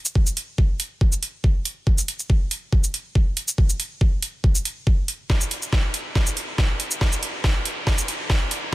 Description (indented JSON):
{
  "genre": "heavy wobble dubstep",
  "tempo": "140 BPM",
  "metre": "4/4",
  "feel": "half-time",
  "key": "none",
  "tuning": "none",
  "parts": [
    { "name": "dubstep drum kit", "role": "drums", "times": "0.1-8.6 s", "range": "hi-hat, shaker, snare drum", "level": "-24 LUFS", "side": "right 1 dB", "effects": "overdrive, high-pass filter on perc, high-pass filter on hats, high-pass filter on snare, high-pass filter on room" },
    { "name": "electronic kick drum", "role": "drums", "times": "0.2-8.4 s", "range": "none", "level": "-19 LUFS", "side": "equal", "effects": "overdrive" }
  ],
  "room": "little or no reverb",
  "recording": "none",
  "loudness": "-20 LUFS",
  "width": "side -18 dB against mid",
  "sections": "0.0-8.7 A section",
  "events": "build-up 0.0-8.7; drum fill 5.3-8.7",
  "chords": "none"
}